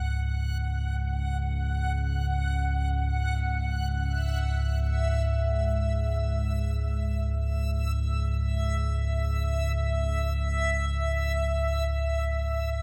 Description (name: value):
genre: dark ambient drone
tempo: free time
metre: none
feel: none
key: C# minor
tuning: A4 = 441 Hz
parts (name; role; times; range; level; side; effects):
- deep rumbling drone; drone; 0.0-12.8 s; C#2 to G#2; -28 LUFS; equal; built-in reverb
- backwards swelling texture; texture; 0.0-12.8 s; E5 to F#5; -35 LUFS; equal; built-in reverb, shimmer reverb
room: wet cathedral reverb, RT60 6.2 s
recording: in a vast, echoing space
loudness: -28 LUFS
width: mono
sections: 0.0-12.8 A section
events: none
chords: 0.0 C#m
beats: free time